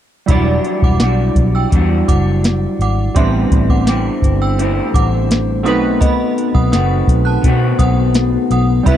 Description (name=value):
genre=indie pop, bedroom pop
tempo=84 BPM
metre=4/4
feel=straight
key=E minor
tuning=A4 = 439 Hz
part: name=synth chime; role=second line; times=0.3-9.0 s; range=D5 to F#6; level=-24 LUFS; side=right 4 dB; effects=ensemble chorus, wide subtle chorus, tape echo
part: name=electric guitar through a small old amp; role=accompaniment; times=0.3-9.0 s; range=A2 to F#4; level=-18 LUFS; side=left 4 dB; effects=lush chorus, vibrato effect
part: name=warm analog keys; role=accompaniment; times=0.3-9.0 s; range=F#3 to D5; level=-21 LUFS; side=right 6 dB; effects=chorus, cassette tape
part: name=vintage muted fingered electric bass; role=bass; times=0.3-9.0 s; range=E1 to B2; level=-16 LUFS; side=equal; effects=none
part: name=soft vintage rhythm box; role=drums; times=0.3-9.0 s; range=hi-hat, kick drum, snare drum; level=-14 LUFS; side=equal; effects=none
room=little or no reverb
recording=dry, close 1970s-style studio recording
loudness=-12 LUFS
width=side -10 dB against mid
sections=0.3-9.0 A section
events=none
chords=0.3 Em9; 3.2 Am11; 5.7 B7b9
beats=| 0.29 1.01 1.72 2.44 | 3.15 3.87 4.58 5.30 | 6.01 6.72 7.44 8.15 | 8.86